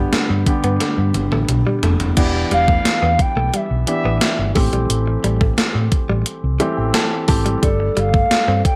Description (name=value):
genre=1980s-style pop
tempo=88 BPM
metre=4/4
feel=straight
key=A minor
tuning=A4 = 440 Hz
part: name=warm grand piano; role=accompaniment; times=0.0-8.8 s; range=D3 to A5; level=-24 LUFS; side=equal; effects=none
part: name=direct-recorded clean electric guitar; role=riff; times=0.0-8.7 s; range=G3 to C4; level=-28 LUFS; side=equal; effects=lush chorus, slapback echo
part: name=hollow-body short-scale fingered electric bass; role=bass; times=0.0-8.6 s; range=E1 to A2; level=-22 LUFS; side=equal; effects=none
part: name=gated 80s digital drum machine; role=drums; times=0.1-8.8 s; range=crash cymbal, hi-hat, kick drum, snare drum, toms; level=-21 LUFS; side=equal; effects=gated reverb, gated reverb snare, overdrive
part: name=hollow clarinet-like synth lead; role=melody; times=2.5-8.8 s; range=E5 to G5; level=-22 LUFS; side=equal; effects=chorus
room=moderate small room reverb, RT60 0.5 s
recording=none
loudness=-17 LUFS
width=mono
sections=0.0-2.2 A section; 2.2-8.8 B section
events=drum fill 0.8-2.2; grand piano fill 6.3-7.6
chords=0.0 G; 2.2 Em7; 4.6 Am7; 7.6 Gsus2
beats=0.13 0.81 1.49 | 2.17 2.85 3.54 4.22 | 4.90 5.58 6.26 6.95 | 7.63 8.31